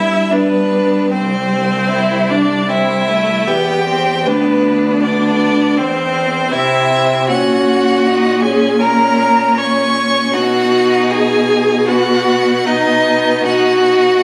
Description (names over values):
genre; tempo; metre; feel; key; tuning
classical, slow romantic movement for string quartet; 78 BPM; 4/4; rubato; B major from 7.3 s; A4 = 440 Hz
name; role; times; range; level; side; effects
bright violin; melody; 0.0-14.2 s; B4 to C#6; -20 LUFS; equal; none
rich violin; second line; 0.0-14.2 s; A3 to E4; -20 LUFS; equal; none
clear viola; accompaniment; 0.0-14.2 s; B3 to C#5; -18 LUFS; equal; none
rich cello; bass; 0.0-14.2 s; C2 to C3; -21 LUFS; equal; none
room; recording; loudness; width
wet recital hall reverb, RT60 1.3 s; recorded on a phone in the room, club reverb, compression; -14 LUFS; mono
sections
0.0-14.2 A section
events
none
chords
0.0 Em/G; 1.1 C; 4.3 Bm/D; 5.8 C/E; 7.3 F#/A#; 10.3 B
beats
0.32 | 1.12 1.90 2.69 3.48 | 4.26 5.03 5.78 6.53 | 7.29 8.05 8.81 9.57 | 10.34 11.11 11.88 12.67 | 13.46